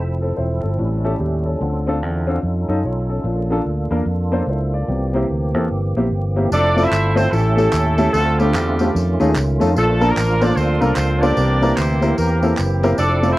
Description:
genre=uptempo gospel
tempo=148 BPM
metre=4/4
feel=swing 62% on 8ths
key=F major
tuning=A4 = 441 Hz
part: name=percussive tonewheel organ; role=sustained chords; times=0.0-13.4 s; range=D3 to A4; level=-25 LUFS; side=right 2 dB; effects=slow rotary speaker, chorus vibrato
part: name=fingered electric bass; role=bass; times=0.0-13.3 s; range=E1 to Gb2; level=-19 LUFS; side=equal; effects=none
part: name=warm upright piano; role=accompaniment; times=0.2-13.3 s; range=A2 to D5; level=-20 LUFS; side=left 1 dB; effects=none
part: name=warm horn section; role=melody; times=6.5-13.4 s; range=G3 to E5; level=-20 LUFS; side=equal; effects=none
part: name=tambourine and handclaps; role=percussion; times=6.5-13.3 s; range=none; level=-30 LUFS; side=right 2 dB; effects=none
room=light reverb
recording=worn, warbling old tape, cassette tape, vinyl crackle, warbly pitch drift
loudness=-16 LUFS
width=side -17 dB against mid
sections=0.0-6.5 A section; 6.5-13.4 B section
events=none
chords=0.0 Fmaj7; 0.8 A7; 1.6 Dm7; 2.4 Faug7; 3.3 Bbmaj7; 4.9 C7; 6.5 Fmaj7; 7.3 A7; 8.1 Dm7; 8.9 F7b13; 9.8 Bbmaj7; 11.4 C7

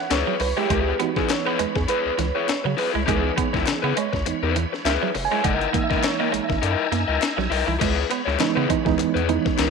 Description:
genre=funk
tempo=101 BPM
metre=4/4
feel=swing 56% on 16ths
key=C# dorian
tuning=A4 = 445 Hz
part: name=bright tonewheel organ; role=sustained chords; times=0.0-9.7 s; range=D#4 to E6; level=-32 LUFS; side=equal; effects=chorus vibrato, slow rotary speaker
part: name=mellow reed electric piano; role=stabs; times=0.0-9.7 s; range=D#3 to G#5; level=-25 LUFS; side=right 11 dB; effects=fast tremolo
part: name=crunchy overdriven guitar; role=accompaniment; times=0.1-9.7 s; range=E4 to D#5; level=-25 LUFS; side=left 12 dB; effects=none
part: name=round analog bass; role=bass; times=0.1-9.7 s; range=E#1 to C#3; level=-27 LUFS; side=left 1 dB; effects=none
part: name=breakbeat sampler-style drum kit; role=drums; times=0.1-9.7 s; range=crash cymbal, hi-hat, kick drum, snare drum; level=-26 LUFS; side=left 4 dB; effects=none
part: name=group handclap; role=percussion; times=0.1-9.7 s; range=none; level=-36 LUFS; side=left 11 dB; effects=none
part: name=electric guitar at the edge of break-up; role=riff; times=0.3-9.4 s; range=E3 to B3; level=-28 LUFS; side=right 12 dB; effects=spring reverb
room=moderate echo chamber reverb, RT60 2.0 s, digital ambience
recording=1960s-style stereo with parts hard left and right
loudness=-20 LUFS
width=side -5 dB against mid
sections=0.0-7.8 A section; 7.8-9.7 B section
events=reed electric piano solo 0.0-7.8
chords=0.0 C#m7; 5.4 F#13; 7.8 C#m7

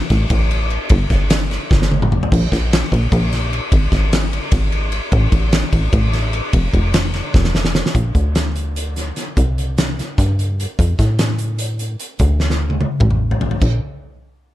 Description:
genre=math rock and midwest emo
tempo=297 BPM (eighths)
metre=7/8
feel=straight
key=unclear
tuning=A4 = 440 Hz
part: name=plucky analog bass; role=bass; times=0.0-13.8 s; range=F1 to A2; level=-17 LUFS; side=equal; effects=none
part: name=loose indie drum kit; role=drums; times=0.1-13.7 s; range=crash cymbal, hi-hat, kick drum, ride cymbal, snare drum, toms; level=-17 LUFS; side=equal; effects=none
room=little or no reverb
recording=dark, warm production, lossy compression artefacts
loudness=-15 LUFS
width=side -14 dB against mid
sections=0.0-8.0 A section; 8.0-13.6 B section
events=drum fill 1.7-2.3, 7.3-8.0, 12.4-13.6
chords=none

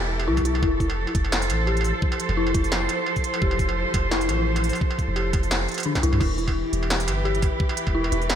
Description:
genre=half-time drum and bass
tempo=172 BPM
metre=4/4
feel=swing 55% on 16ths, half-time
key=E phrygian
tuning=A4 = 440 Hz
part: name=rich symphonic cello section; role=sustained chords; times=0.0-8.4 s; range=E3 to C5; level=-27 LUFS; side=right 2 dB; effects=sidechain pumping
part: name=dark detuned synth bell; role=arpeggios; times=0.0-8.4 s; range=D4 to G4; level=-28 LUFS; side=left 4 dB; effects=chorus, diffuse ambient delay
part: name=long sustained 808-style bass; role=bass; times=0.0-8.4 s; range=E1 to C2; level=-25 LUFS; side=equal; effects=none
part: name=industrial drum kit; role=drums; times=0.2-8.4 s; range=crash cymbal, hi-hat, snare drum, struck metal, toms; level=-28 LUFS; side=right 1 dB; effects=small room reverb
part: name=electronic kick drum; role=drums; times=0.4-7.9 s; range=none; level=-25 LUFS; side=equal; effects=overdrive, small room reverb
room=light reverb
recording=none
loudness=-21 LUFS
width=side -9 dB against mid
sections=0.0-6.2 A section; 6.2-8.4 A section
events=drop 0.0-6.2, 6.2-8.4; drum fill 5.9-6.2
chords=0.0 Em; 0.6 F; 6.2 Em

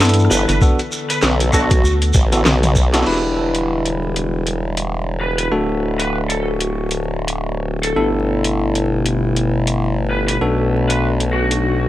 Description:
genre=glitch hop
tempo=98 BPM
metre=4/4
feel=swing 58% on 16ths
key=E minor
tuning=A4 = 440 Hz
part: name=warbly tape-like pad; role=sustained chords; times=0.0-11.9 s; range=B2 to A4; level=-24 LUFS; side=left 2 dB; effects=chorus, built-in reverb, sidechain pumping
part: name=bell-like tine electric piano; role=stabs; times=0.0-11.9 s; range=A3 to B4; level=-22 LUFS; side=equal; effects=medium stereo tremolo, vintage 12-bit sampler grit, sidechain pumping, low-pass filter, dub echo
part: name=rubbery square bass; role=bass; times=0.0-2.1 s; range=G1 to G2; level=-15 LUFS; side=equal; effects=none
part: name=drum and bass drum kit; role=drums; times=0.0-11.6 s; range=crash cymbal, hi-hat, rim click, snare drum, toms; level=-20 LUFS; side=equal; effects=none
part: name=shekere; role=percussion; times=0.0-3.0 s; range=none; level=-26 LUFS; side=right 1 dB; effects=none
part: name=lead guitar through a small cranked amp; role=melody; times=0.3-11.9 s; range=F#4 to B4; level=-24 LUFS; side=equal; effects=overdrive, dub echo
part: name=formant-sweep wobble bass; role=bass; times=0.3-11.9 s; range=D1 to B1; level=-20 LUFS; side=equal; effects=chorus, overdrive
part: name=electronic kick drum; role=drums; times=0.6-2.9 s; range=none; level=-15 LUFS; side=equal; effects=none
room=little or no reverb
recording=vinyl crackle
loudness=-15 LUFS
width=side -14 dB against mid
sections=0.0-3.1 A section; 3.1-11.9 B section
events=drum fill 2.5-3.1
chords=0.0 G69; 0.6 Bm7; 1.8 D6; 3.1 Em7; 5.5 D; 8.0 G69; 10.4 Bm7

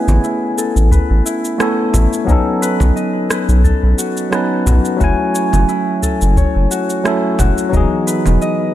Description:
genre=sunset chillout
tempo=88 BPM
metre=4/4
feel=swing 54% on 16ths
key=unclear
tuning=A4 = 441 Hz
part: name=bright tine electric piano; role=accompaniment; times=0.0-8.7 s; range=E3 to G#5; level=-17 LUFS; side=moving between left 4 dB and right 4 dB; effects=auto-pan, low-pass filter, tape echo
part: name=Celtic harp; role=arpeggios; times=0.0-8.7 s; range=C#4 to D#5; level=-22 LUFS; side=left 5 dB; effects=low-pass filter, tape echo
part: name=round analog bass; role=bass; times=0.1-8.4 s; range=E1 to B1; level=-12 LUFS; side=equal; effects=none
part: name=electronic cabasa and rim click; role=drums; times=0.1-8.6 s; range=none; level=-23 LUFS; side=right 1 dB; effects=none
part: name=congas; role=percussion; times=0.1-8.4 s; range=none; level=-24 LUFS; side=right 2 dB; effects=none
part: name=electronic kick drum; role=drums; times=0.9-7.9 s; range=none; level=-17 LUFS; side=equal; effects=overdrive
room=light reverb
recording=none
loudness=-12 LUFS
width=side -13 dB against mid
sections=0.0-8.7 A section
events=filter sweep on tine electric piano 0.0-8.7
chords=0.0 Amaj9; 2.3 B7; 5.0 F#m7; 7.7 Emaj7

